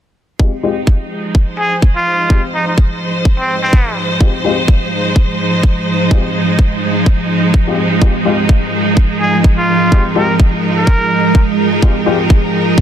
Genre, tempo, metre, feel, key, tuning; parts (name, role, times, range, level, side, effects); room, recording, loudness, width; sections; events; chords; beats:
bass house; 126 BPM; 4/4; swing 56% on 16ths; F minor; A4 = 436 Hz
deep dark ambient pad; sustained chords; 3.1-12.8 s; Ab3 to Ab4; -19 LUFS; right 2 dB; chorus, built-in reverb, sidechain pumping
clear grand piano; stabs; 0.4-12.1 s; Ab3 to G4; -19 LUFS; left 5 dB; sidechain pumping, low-pass filter, dub echo
electronic kick drum; drums; 0.4-12.8 s; -10 LUFS; equal
clear studio string section; texture; 0.4-12.8 s; F3 to C5; -17 LUFS; right 1 dB; sidechain pumping
trumpet with straight mute; melody; 1.6-4.0, 9.2-11.4 s; C4 to Bb4; -17 LUFS; equal; dub echo
light reverb, small room reverb; dense, heavily limited modern master; -11 LUFS; side -10 dB against mid
0.4-12.8 A section
filter sweep on ambient pad 0.4-12.8
0.4 Fmadd9
| 0.40 0.87 1.35 1.82 | 2.30 2.78 3.25 3.73 | 4.21 4.68 5.16 5.63 | 6.11 6.59 7.06 7.54 | 8.02 8.49 8.97 9.44 | 9.92 10.40 10.87 11.35 | 11.82 12.30 12.78